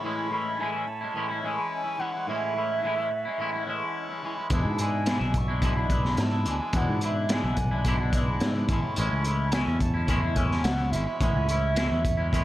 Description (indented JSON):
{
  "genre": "psychedelic rock",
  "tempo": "108 BPM",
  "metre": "4/4",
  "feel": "straight",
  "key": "unclear",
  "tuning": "A4 = 439 Hz",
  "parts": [
    { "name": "combo organ", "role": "sustained chords", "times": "0.0-12.4 s", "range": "C#5 to B5", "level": "-42 LUFS", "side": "right 2 dB", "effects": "phaser" },
    { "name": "twangy electric guitar", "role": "riff", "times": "0.0-12.4 s", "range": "E2 to E4", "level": "-30 LUFS", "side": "left 1 dB", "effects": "phaser" },
    { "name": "mellow concert flute", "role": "melody", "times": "0.3-12.4 s", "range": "E5 to C#6", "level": "-32 LUFS", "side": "right 2 dB", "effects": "analog delay" },
    { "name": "picked electric bass", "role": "bass", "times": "4.5-12.4 s", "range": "G#1 to G#2", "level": "-28 LUFS", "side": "equal", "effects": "none" },
    { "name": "crunchy breakbeat drum kit", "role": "drums", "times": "4.5-12.4 s", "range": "hi-hat, kick drum, snare drum", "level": "-28 LUFS", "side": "equal", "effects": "none" }
  ],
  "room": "little or no reverb",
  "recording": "none",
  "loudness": "-24 LUFS",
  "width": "side -14 dB against mid",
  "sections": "0.0-12.4 A section",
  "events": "none",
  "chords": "0.0 Amaj7; 4.5 E7; 8.7 Amaj7"
}